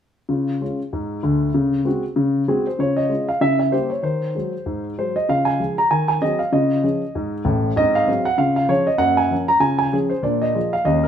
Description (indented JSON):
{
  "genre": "jazz, stride piano",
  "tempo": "193 BPM",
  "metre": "4/4",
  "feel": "swing 58% on 8ths",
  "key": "Db major",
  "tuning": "A4 = 438 Hz",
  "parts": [
    { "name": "warm grand piano", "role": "solo", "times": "0.3-11.1 s", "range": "A1 to Bb5", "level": "-17 LUFS", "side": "equal", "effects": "none" }
  ],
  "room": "moderate stone room reverb, RT60 1.1 s",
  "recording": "band playing live in one room",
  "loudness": "-17 LUFS",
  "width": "side -9 dB against mid",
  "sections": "0.3-2.8 A section; 2.8-11.1 B section",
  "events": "none",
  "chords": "0.3 Db; 1.5 Ab7/Db; 2.8 Db; 3.4 Dbdim7; 4.0 Ab7/Eb; 5.3 Db; 5.9 Ab7/Eb; 6.5 Db; 7.8 Ab7; 8.4 Db; 9.0 Gbmaj7; 9.6 Db; 10.2 Bb7"
}